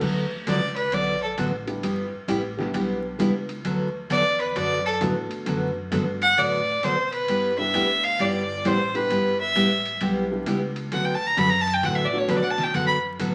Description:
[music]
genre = country, western swing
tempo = 132 BPM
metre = 4/4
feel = swing 65% on 8ths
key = D major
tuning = A4 = 439 Hz
[part]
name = picked steel-string acoustic guitar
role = accompaniment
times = 0.0-13.3 s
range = D3 to A4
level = -28 LUFS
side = equal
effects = none
[part]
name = upright bass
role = bass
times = 0.0-13.3 s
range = G1 to B2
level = -37 LUFS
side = equal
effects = none
[part]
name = lo-fi sampler-style drum kit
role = drums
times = 0.0-13.3 s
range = crash cymbal, hi-hat, kick drum, ride cymbal, snare drum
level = -40 LUFS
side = equal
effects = overdrive
[part]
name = clear fiddle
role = second line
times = 0.5-1.3, 4.1-13.0 s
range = A4 to B5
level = -25 LUFS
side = equal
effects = none
[part]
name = dark upright piano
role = accompaniment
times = 1.7-12.7 s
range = F#3 to A4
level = -34 LUFS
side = equal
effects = none
[sound]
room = wet studio reverb, RT60 0.8 s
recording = vinyl crackle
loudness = -24 LUFS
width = mono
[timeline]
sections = 0.0-13.3 A section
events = fiddle solo 0.0-13.3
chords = 0.0 D6; 1.8 G6; 3.7 D6; 7.3 G6; 10.9 D6

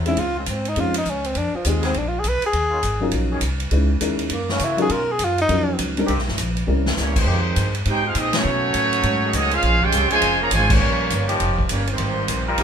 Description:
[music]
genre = jazz, big band swing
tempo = 203 BPM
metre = 4/4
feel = swing 62% on 8ths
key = unclear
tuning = A4 = 441 Hz
[part]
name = mellow trombone section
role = sustained chords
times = 0.0-12.6 s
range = C3 to Bb4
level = -28 LUFS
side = left 1 dB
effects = none
[part]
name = upright bass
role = bass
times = 0.0-12.6 s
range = F1 to Db3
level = -23 LUFS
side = equal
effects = none
[part]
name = breathy tenor saxophone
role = melody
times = 0.1-5.8 s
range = F3 to Cb5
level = -22 LUFS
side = left 1 dB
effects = none
[part]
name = dark upright piano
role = accompaniment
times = 0.1-6.8 s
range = Gb3 to Cb5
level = -24 LUFS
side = left 2 dB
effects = none
[part]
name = swinging big-band drum kit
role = drums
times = 0.1-12.6 s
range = crash cymbal, hi-hat, kick drum, ride cymbal, snare drum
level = -26 LUFS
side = equal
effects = none
[part]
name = clear trumpet section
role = melody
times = 7.0-12.5 s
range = Ab3 to Bb5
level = -21 LUFS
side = right 1 dB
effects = none
[part]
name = warm trombone section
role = second line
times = 7.0-12.6 s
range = Db3 to G4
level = -26 LUFS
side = right 3 dB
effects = none
[sound]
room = moderate club reverb, RT60 0.8 s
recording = minimal, uncompressed stereo recording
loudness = -18 LUFS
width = side -8 dB against mid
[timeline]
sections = 0.0-7.3 A section; 7.3-12.6 B section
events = tenor saxophone solo 0.0-7.3; drum fill 6.7; band accent 8.3, 10.7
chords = 0.2 Dbmaj7; 1.4 Fm9; 1.9 Bb7b9; 2.5 Ebm9; 3.7 Dbm9; 4.3 Gb9; 4.9 Bmaj9#11; 6.1 Cm7; 6.7 C7b9; 7.3 Fm11; 8.5 B13; 9.6 Bbm9; 10.8 Eb9; 12.0 Abmaj13

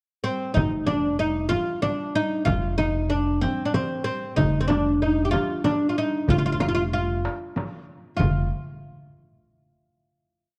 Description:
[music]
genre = Arabic maqam ensemble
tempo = 94 BPM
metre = 3/4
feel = straight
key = unclear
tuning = A4 = 440 Hz
[part]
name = oud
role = melody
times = 0.2-8.5 s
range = C4 to G4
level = -26 LUFS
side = equal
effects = none
[part]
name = upright bass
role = bass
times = 0.6-8.5 s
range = F1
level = -29 LUFS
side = equal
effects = none
[part]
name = frame drum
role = percussion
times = 0.6-8.5 s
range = none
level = -30 LUFS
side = equal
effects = none
[part]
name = darbuka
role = percussion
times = 4.4-8.5 s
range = none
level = -31 LUFS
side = equal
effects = none
[sound]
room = light reverb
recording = worn, warbling old tape, cassette tape, warbly pitch drift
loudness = -24 LUFS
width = mono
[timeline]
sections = 0.0-0.6 pickup bar; 0.6-8.2 A section; 8.2-10.1 final note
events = none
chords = none

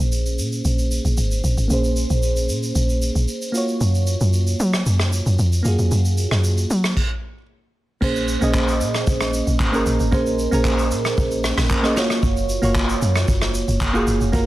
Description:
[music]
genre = amapiano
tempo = 114 BPM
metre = 4/4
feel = straight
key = unclear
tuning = A4 = 439 Hz
[part]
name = bell-like FM electric piano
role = accompaniment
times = 0.0-14.5 s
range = Bb3 to Eb5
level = -23 LUFS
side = right 2 dB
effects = chorus, low-pass filter
[part]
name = deep log drum bass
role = bass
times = 0.0-14.5 s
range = F1 to Gb3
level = -20 LUFS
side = equal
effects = none
[part]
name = vintage brush drum kit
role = drums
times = 0.0-14.5 s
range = crash cymbal, handclaps, kick drum, rim click, shaker, snare drum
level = -24 LUFS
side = equal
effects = soft clipping on snare
[sound]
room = light reverb, small room ambience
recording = dense, heavily limited modern master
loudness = -17 LUFS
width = side -16 dB against mid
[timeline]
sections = 0.0-8.0 A section; 8.0-14.5 B section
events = filter sweep on FM electric piano 0.0-8.0; stop 7.0-8.0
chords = 0.0 Bbm9; 3.5 Gbmaj7; 8.0 Bbm9; 12.0 Gbmaj7

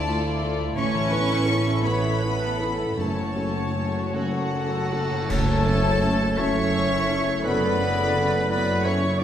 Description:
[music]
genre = cinematic, emotional film score for orchestra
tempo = 51-58 BPM (dotted quarters)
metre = 6/8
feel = rubato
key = unclear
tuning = A4 = 440 Hz
[part]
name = warm studio violin section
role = melody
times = 0.0-9.2 s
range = F#5 to D6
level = -31 LUFS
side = left 2 dB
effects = none
[part]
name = warm studio violin section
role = second line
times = 0.0-9.2 s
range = C#4 to D5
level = -31 LUFS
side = left 2 dB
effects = none
[part]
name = felt-muted upright piano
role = accompaniment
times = 0.0-9.2 s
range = F#1 to A4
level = -30 LUFS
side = equal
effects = none
[part]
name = warm studio viola section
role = accompaniment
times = 0.0-9.2 s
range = F#3 to D5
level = -30 LUFS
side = equal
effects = none
[part]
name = concert harp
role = arpeggios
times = 0.0-9.1 s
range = F#2 to A5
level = -33 LUFS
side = left 3 dB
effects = none
[part]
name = warm studio cello section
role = bass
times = 0.0-9.2 s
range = F#2 to C#4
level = -30 LUFS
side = right 2 dB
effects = none
[part]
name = warm studio double bass section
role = bass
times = 0.0-9.2 s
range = F#1 to D2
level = -29 LUFS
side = right 3 dB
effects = none
[part]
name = cymbal swell, clash cymbals and concert bass drum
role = percussion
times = 0.8-6.7 s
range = none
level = -33 LUFS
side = equal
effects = none
[part]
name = concert flute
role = second line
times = 4.1-9.2 s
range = A4 to F#5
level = -30 LUFS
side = left 1 dB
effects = none
[part]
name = warm oboe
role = second line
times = 4.1-9.2 s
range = F#4 to D5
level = -31 LUFS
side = right 1 dB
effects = none
[part]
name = warm French horn section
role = sustained chords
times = 4.2-9.2 s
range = F#3 to D5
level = -28 LUFS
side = left 2 dB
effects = none
[sound]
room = wet recital hall reverb, RT60 1.4 s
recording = recorded in a church or concert hall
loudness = -21 LUFS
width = side -10 dB against mid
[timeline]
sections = 0.0-5.3 A section; 5.3-9.2 B section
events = band accent 5.3-6.0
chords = 0.0 Dmadd9; 0.8 Aadd9; 3.0 F#m; 5.3 A6/F#

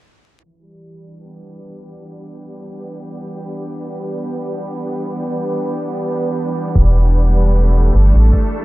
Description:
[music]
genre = ambient dub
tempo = 76 BPM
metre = 4/4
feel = straight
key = E minor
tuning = A4 = 441 Hz
[part]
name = clear symphonic string section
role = sustained chords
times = 0.4-8.6 s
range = E3 to A4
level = -22 LUFS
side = right 1 dB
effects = none
[part]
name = round analog bass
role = bass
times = 6.8-8.3 s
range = E1 to A1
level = -11 LUFS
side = equal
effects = tube saturation
[part]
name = electronic kick drum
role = drums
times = 6.8-8.5 s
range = none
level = -16 LUFS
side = equal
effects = none
[sound]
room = light reverb, small room reverb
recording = vinyl crackle, low-pass filter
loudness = -14 LUFS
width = side -19 dB against mid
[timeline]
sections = 0.4-8.6 A section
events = fade-in on string section 0.4-8.6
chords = 0.4 Em7

